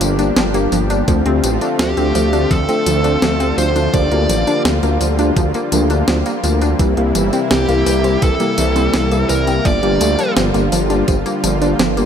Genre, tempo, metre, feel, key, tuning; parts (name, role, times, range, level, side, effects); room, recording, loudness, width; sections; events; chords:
synthwave; 84 BPM; 4/4; straight; G dorian; A4 = 440 Hz
lush unison pad; sustained chords; 0.0-12.1 s; C3 to G4; -21 LUFS; equal; chorus, sidechain pumping
analog pluck; arpeggios; 0.0-12.0 s; E3 to D4; -22 LUFS; right 1 dB; chorus, ping-pong delay
mellow FM electric piano; stabs; 0.0-12.1 s; G3 to D5; -21 LUFS; left 3 dB; chorus, tremolo, ping-pong delay
wide detuned saw bass; bass; 0.0-12.1 s; G1 to D2; -18 LUFS; equal; chorus
clean 12-bit digital drum machine; drums; 0.0-12.1 s; hi-hat, snare drum, tambourine; -21 LUFS; equal; overdrive
electronic kick drum; drums; 1.1-11.2 s; -17 LUFS; equal; overdrive
dark smooth lead guitar; melody; 1.8-10.3 s; G4 to D5; -20 LUFS; equal; overdrive, tape echo
light reverb; -13 LUFS; side -8 dB against mid
0.0-12.1 A section
0.0 Gm7; 1.1 Dm7; 3.9 Gm7; 6.8 C7; 9.7 Gm7